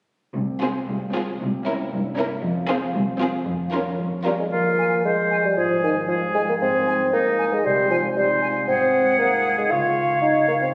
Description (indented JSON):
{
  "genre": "cinematic, playful, whimsical film cue",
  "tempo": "116 BPM",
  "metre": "2/4",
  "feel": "straight",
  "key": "F minor",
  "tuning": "A4 = 440 Hz",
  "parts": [
    { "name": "concert harp", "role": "arpeggios", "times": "0.4-10.7 s", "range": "Ab2 to Db5", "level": "-32 LUFS", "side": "equal", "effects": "none" },
    { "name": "warm studio cello section", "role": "bass", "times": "0.4-4.4 s", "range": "C2 to G2", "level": "-30 LUFS", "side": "equal", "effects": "none" },
    { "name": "rich studio violin section", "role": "melody", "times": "0.6-4.4 s", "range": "Ab4 to Bb4", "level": "-33 LUFS", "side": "equal", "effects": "none" },
    { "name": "rich studio violin section", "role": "second line", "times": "0.6-4.5 s", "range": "E4 to F4", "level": "-34 LUFS", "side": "equal", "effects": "none" },
    { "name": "rich studio viola section", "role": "accompaniment", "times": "0.6-4.5 s", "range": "C4 to Db4", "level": "-31 LUFS", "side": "equal", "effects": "none" },
    { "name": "dark bassoon", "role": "accompaniment", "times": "4.3-10.7 s", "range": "Eb3 to F4", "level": "-23 LUFS", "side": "equal", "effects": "none" },
    { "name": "clear oboe", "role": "second line", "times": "4.5-10.7 s", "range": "Eb4 to Db5", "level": "-26 LUFS", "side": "equal", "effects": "none" },
    { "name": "silver concert flute", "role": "second line", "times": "4.8-10.7 s", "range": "F5 to Ab5", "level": "-29 LUFS", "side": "equal", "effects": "none" }
  ],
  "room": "wet scoring stage reverb, RT60 1.7 s",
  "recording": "recorded on a phone in the room, club reverb",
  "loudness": "-22 LUFS",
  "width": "mono",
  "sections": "0.4-4.5 A section; 4.5-10.7 B section",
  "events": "none",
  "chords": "0.4 Fm/C; 1.4 C7b9; 2.4 Fm; 3.5 Bbm/F; 4.5 Fm; 5.6 Fm/Ab; 6.6 Ab; 7.6 Ab/C; 8.7 Ab7; 9.7 Db"
}